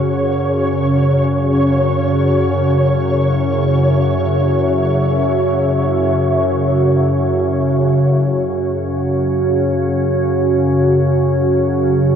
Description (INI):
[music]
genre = dark ambient drone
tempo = free time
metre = none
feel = none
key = unclear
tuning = A4 = 439 Hz
[part]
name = deep dark ambient pad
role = sustained chords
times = 0.0-12.2 s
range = F#4 to F#5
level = -18 LUFS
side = right 1 dB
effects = chorus, built-in reverb
[part]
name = organ-like drone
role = drone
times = 0.0-12.2 s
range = F#2 to C#3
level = -15 LUFS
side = equal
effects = ensemble chorus, built-in reverb
[part]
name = flickering grainy texture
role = texture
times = 0.0-7.6 s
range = C#5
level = -22 LUFS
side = equal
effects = built-in reverb
[sound]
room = wet huge ambient reverb, RT60 7.6 s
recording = worn, warbling old tape, cassette tape, warbly pitch drift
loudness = -13 LUFS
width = side -8 dB against mid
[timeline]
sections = 0.0-7.6 A section; 7.6-12.2 A section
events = none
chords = 0.0 F#5